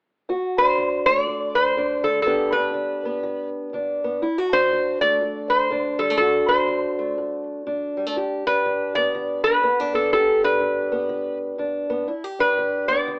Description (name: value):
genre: acoustic country blues, solo or duo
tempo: 122 BPM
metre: 4/4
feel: swing 62% on 8ths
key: D mixolydian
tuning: A4 = 437 Hz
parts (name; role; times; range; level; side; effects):
- fingerpicked old ladder-braced acoustic guitar; accompaniment; 0.3-13.2 s; D2 to G4; -27 LUFS; equal; none
- metal-body resonator slide guitar; melody; 0.6-13.2 s; A4 to D5; -22 LUFS; equal; plate reverb
room: light reverb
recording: AM radio sound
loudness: -22 LUFS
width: mono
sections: 0.3-13.2 A section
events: none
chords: 0.3 D; 2.3 G; 4.2 D; 8.2 G